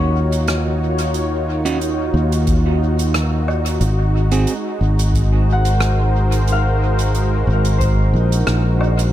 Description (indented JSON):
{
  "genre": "ambient dub",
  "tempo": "90 BPM",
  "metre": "4/4",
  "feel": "swing 54% on 16ths",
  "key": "unclear",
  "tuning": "A4 = 440 Hz",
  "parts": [
    { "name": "warm analog pad", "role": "sustained chords", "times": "0.0-9.1 s", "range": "Eb3 to Db5", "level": "-22 LUFS", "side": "right 1 dB", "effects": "chorus" },
    { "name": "concert harp", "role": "arpeggios", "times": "0.0-9.1 s", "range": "Eb4 to Gb5", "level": "-27 LUFS", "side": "left 1 dB", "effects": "dub echo" },
    { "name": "fingered electric bass", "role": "bass", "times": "0.0-9.1 s", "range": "Ab1 to Eb2", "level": "-16 LUFS", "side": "equal", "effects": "none" },
    { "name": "soft-mallet drum kit", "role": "drums", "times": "0.3-9.1 s", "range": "hi-hat, rim click, woodblock", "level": "-27 LUFS", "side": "right 1 dB", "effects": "dub echo" },
    { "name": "semi-hollow electric guitar", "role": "stabs", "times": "1.7-4.5 s", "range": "C4 to Ab4", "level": "-28 LUFS", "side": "right 4 dB", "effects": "none" },
    { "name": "electronic kick drum", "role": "drums", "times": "2.5-8.0 s", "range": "none", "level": "-22 LUFS", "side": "equal", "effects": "none" }
  ],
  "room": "small room ambience",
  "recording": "echo-heavy mix",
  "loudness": "-15 LUFS",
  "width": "side -12 dB against mid",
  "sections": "0.0-9.1 A section",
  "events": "none",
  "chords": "0.0 Ebm7; 3.8 Ab7",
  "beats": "0.48 | 1.14 1.81 2.48 3.14 | 3.81 4.48 5.14 5.81 | 6.48 7.14 7.81 8.48"
}